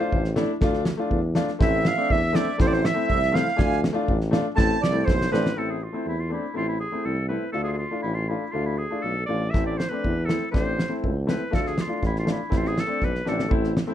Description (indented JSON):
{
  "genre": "klezmer",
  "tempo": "121 BPM",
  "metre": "2/4",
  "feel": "straight",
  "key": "A harmonic minor",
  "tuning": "A4 = 439 Hz",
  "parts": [
    { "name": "bright clarinet", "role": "melody", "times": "0.0-13.5 s", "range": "E4 to A5", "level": "-28 LUFS", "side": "equal", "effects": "slapback echo" },
    { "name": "bright upright piano", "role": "accompaniment", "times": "0.0-13.9 s", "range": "A3 to F4", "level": "-28 LUFS", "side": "left 2 dB", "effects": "none" },
    { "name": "clear tuba", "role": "bass", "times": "0.1-13.8 s", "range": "A1 to E2", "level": "-27 LUFS", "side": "equal", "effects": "none" },
    { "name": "loose indie drum kit", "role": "drums", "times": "0.1-5.6, 9.5-13.9 s", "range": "kick drum, snare drum", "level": "-25 LUFS", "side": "equal", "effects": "none" },
    { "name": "accordion", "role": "second line", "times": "1.6-5.5 s", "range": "C5 to A5", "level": "-29 LUFS", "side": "right 11 dB", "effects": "light tremolo tuning" }
  ],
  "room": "light reverb",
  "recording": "dark, warm production",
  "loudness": "-22 LUFS",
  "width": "side -11 dB against mid",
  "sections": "0.0-5.6 A section; 5.6-13.5 B section",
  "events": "clarinet solo 0.0-5.6; drum fill 5.1-5.6, 13.3",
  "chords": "0.0 Dm; 1.6 Am; 3.6 Dm; 4.6 Am; 7.6 Dm; 9.5 Am; 11.5 Dm; 12.5 Am"
}